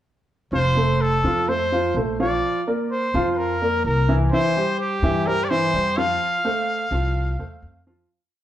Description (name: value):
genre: latin, Cuban son and guajira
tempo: 127 BPM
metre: 4/4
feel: straight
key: F major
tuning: A4 = 440 Hz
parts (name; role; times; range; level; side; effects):
- breathy trumpet; melody; 0.5-7.9 s; G4 to F5; -23 LUFS; equal; plate reverb
- warm grand piano; arpeggios; 0.5-8.1 s; E3 to F5; -23 LUFS; equal; none
- upright bass; bass; 0.5-8.0 s; F1 to G2; -24 LUFS; equal; none
room: wet studio reverb, RT60 0.8 s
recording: heard from further back in the room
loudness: -19 LUFS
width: side -12 dB against mid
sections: 0.5-8.1 A section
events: fade-out 6.2-8.1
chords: 0.5 F; 2.4 Bb; 4.3 C; 6.2 F